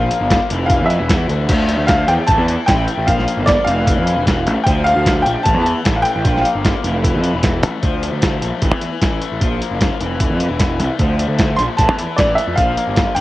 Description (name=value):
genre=indie rock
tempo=152 BPM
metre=4/4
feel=straight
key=D minor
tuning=A4 = 441 Hz
part: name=bright upright piano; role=melody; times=0.0-7.0, 11.6-13.2 s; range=D5 to C6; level=-18 LUFS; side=equal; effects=cassette tape
part: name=electric guitar through a small old amp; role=riff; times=0.0-13.2 s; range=E3 to D4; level=-33 LUFS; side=right 9 dB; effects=none
part: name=raw garage guitar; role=riff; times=0.0-13.2 s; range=E3 to Bb3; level=-24 LUFS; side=left 8 dB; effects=overdrive, cassette tape
part: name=fuzz picked electric bass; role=bass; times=0.0-13.2 s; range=E1 to F2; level=-18 LUFS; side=equal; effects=overdrive
part: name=lo-fi sampler-style drum kit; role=drums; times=0.1-13.2 s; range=crash cymbal, hi-hat, kick drum, snare drum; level=-18 LUFS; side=equal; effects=cassette tape
room=moderate spring reverb, RT60 2.1 s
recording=home recording on cassette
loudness=-14 LUFS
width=side -17 dB against mid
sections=0.0-1.5 A section; 1.5-13.2 A section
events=none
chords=0.0 Bb; 0.5 Fmaj7; 1.5 Dm7; 2.3 Am; 3.1 Bb; 3.7 Fmaj7; 4.7 Dm7; 5.5 Am; 6.2 Bb; 6.8 Fmaj7; 7.8 Dm7; 8.6 Am; 9.4 Bb; 10.0 Fmaj7; 11.0 Dm7; 11.8 Am; 12.6 Bb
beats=0.30 0.70 1.10 | 1.49 1.89 2.29 2.68 | 3.08 3.47 3.87 4.27 | 4.66 5.06 5.46 5.85 | 6.25 6.64 7.04 7.43 | 7.83 8.22 8.62 9.02 | 9.41 9.80 10.20 10.60 | 10.99 11.38 11.78 12.17 | 12.57 12.96